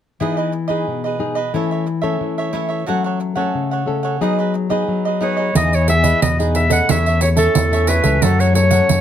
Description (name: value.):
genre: samba and choro.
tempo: 90 BPM.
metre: 4/4.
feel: straight.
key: E major.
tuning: A4 = 439 Hz.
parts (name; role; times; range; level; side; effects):
cavaquinho; accompaniment; 0.2-9.0 s; D#4 to F#5; -23 LUFS; right 6 dB; none.
nylon-string guitar; accompaniment; 0.2-9.0 s; B2 to A4; -20 LUFS; left 5 dB; none.
clear clarinet; melody; 5.2-9.0 s; A4 to F#5; -17 LUFS; equal; slapback echo.
fingered electric bass with an envelope filter; bass; 5.5-9.0 s; C#2 to F#2; -17 LUFS; equal; none.
pandeiro; percussion; 5.6-9.0 s; none; -20 LUFS; right 7 dB; none.
room: light reverb.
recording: close, detailed microphones.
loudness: -15 LUFS.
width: side -10 dB against mid.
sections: 0.2-5.6 A section; 5.6-9.0 B section.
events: none.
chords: 0.2 Emaj7; 1.5 A/E; 2.9 F#m; 4.2 B6/F#; 5.6 Emaj7; 6.9 A/E; 8.2 F#m.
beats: | 0.20 0.87 1.54 2.21 | 2.88 3.55 4.22 4.88 | 5.55 6.22 6.89 7.56 | 8.22 8.89.